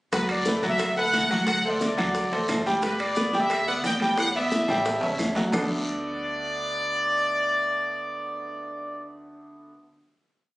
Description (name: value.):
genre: latin, salsa.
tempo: 178 BPM.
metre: 4/4.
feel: straight.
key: D major.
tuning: A4 = 440 Hz.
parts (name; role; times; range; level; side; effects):
bright trumpet section; melody; 0.1-9.0 s; B4 to G5; -26 LUFS; equal; none.
bright concert grand piano; accompaniment; 0.1-9.7 s; D3 to G5; -28 LUFS; equal; none.
upright bass; bass; 0.1-9.7 s; G1 to E2; -36 LUFS; equal; none.
bongos; percussion; 0.1-5.6 s; none; -34 LUFS; left 1 dB; none.
congas; percussion; 0.1-5.6 s; none; -31 LUFS; equal; none.
guiro; percussion; 0.1-5.6 s; none; -37 LUFS; left 1 dB; none.
maracas; percussion; 0.1-5.6 s; none; -43 LUFS; right 1 dB; none.
timbales; percussion; 0.1-5.6 s; none; -34 LUFS; right 1 dB; none.
claves; percussion; 0.3-5.6 s; none; -38 LUFS; equal; none.
room: moderate large studio reverb, RT60 0.8 s.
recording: recorded on a phone in the room, club reverb, nothing above 10.6 kHz.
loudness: -23 LUFS.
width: side -19 dB against mid.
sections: 0.1-5.5 verse; 5.5-8.2 final chord.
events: drum fill 4.2-5.5.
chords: 0.1 D6; 1.5 D7; 2.8 G6; 4.2 Em7; 4.9 A7; 5.5 D6.